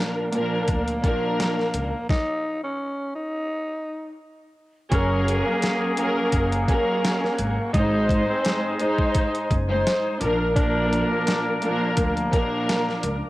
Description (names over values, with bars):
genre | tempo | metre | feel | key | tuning
hip hop, boom-bap hip-hop | 85 BPM | 4/4 | swing 54% on 16ths | unclear | A4 = 442 Hz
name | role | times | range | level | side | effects
growling tenor saxophone | melody | 0.0-13.3 s | Bb3 to Eb4 | -28 LUFS | equal | high-pass filter, low-pass filter, cassette tape
dark studio string section | accompaniment | 0.0-13.2 s | Ab2 to C5 | -24 LUFS | equal | cassette tape, high-pass filter, low-pass filter
boom bap sampler-style drum kit | drums | 0.3-13.2 s | hi-hat, kick drum, snare drum | -24 LUFS | equal | none
upright bass | bass | 0.7-13.2 s | Gb1 to D2 | -26 LUFS | equal | transformer saturation
mellow tonewheel organ | sustained chords | 4.9-13.3 s | Bb4 to Eb6 | -35 LUFS | equal | slow rotary speaker, high-pass filter, low-pass filter, cassette tape
warm trumpet section | stabs | 4.9-13.0 s | Ab3 to C5 | -30 LUFS | left 2 dB | high-pass filter, low-pass filter, cassette tape, tape echo
room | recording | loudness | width
light reverb, studio ambience | home recording on cassette | -21 LUFS | side -17 dB against mid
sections
0.0-4.9 A section; 4.9-13.3 B section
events
stop 2.1-4.9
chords
0.0 Bb; 2.1 N.C.; 4.9 Gbadd9; 7.7 Ab; 10.2 Bb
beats
0.68 1.39 | 2.09 2.80 3.50 4.21 | 4.92 5.62 6.33 7.03 | 7.74 8.45 9.15 9.86 | 10.56 11.27 11.97 12.68